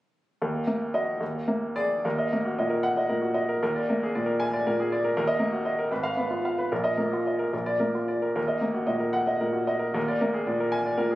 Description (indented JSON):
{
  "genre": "classical, romantic character piece for solo piano",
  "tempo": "68-80 BPM (dotted quarters)",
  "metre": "6/8",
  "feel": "rubato",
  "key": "Eb minor",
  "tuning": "A4 = 441 Hz",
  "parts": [
    { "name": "bright upright piano", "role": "solo", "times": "0.4-11.2 s", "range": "Ab1 to Ab5", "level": "-24 LUFS", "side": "equal", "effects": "none" }
  ],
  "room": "moderate recital hall reverb, RT60 1.3 s",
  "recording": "recorded on a phone in the room, studio ambience, compression",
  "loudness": "-24 LUFS",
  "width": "side -16 dB against mid",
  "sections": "0.4-2.0 A section; 2.0-11.2 B section",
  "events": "none",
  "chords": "0.4 Ebm; 1.2 Bb7/Eb; 2.0 Ebm; 3.6 Bb7/Eb; 5.1 Ebm; 5.9 Fdim/Ab; 6.7 Bbsus4; 7.5 Bb; 8.4 Ebm; 10.0 Bb7/Eb",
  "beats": "| 0.40 1.20 | 2.04 2.84 | 3.61 4.37 | 5.13 5.90 | 6.71 7.53 | 8.37 9.17 | 9.96 10.72"
}